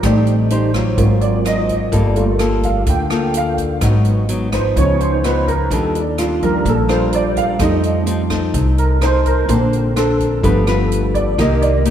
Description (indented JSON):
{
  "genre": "bossa nova",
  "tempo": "127 BPM",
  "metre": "4/4",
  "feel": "straight",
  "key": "unclear",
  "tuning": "A4 = 440 Hz",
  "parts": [
    { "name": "nylon-string guitar", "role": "accompaniment", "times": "0.0-11.9 s", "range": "Ab2 to C5", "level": "-20 LUFS", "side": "left 3 dB", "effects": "none" },
    { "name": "warm grand piano", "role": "accompaniment", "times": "0.0-11.9 s", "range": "D3 to G5", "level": "-18 LUFS", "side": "right 2 dB", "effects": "ensemble chorus" },
    { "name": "upright bass", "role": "bass", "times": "0.0-11.9 s", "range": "G1 to F2", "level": "-18 LUFS", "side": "equal", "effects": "none" },
    { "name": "swinging big-band drum kit", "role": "drums", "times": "0.0-11.9 s", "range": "hi-hat, kick drum, rim click", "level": "-24 LUFS", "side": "equal", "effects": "none" }
  ],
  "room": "moderate lush hall reverb, RT60 1.9 s",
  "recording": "dreamy mix soaked in reverb",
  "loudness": "-14 LUFS",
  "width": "side -10 dB against mid",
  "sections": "0.0-11.9 A section",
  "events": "grand piano solo 0.0-11.9",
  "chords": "0.0 Am7b5; 1.0 Ab13; 1.9 Gm9; 3.8 Abm7; 4.8 Db9; 5.7 Ebmaj9; 7.6 F7; 9.5 Bbmaj9; 10.4 G7; 11.4 Cm7",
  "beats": "| 0.03 0.50 0.98 1.45 | 1.92 2.40 2.87 3.34 | 3.81 4.29 4.76 5.23 | 5.71 6.18 6.65 7.12 | 7.60 8.07 8.54 9.02 | 9.49 9.96 10.44 10.91 | 11.38 11.86"
}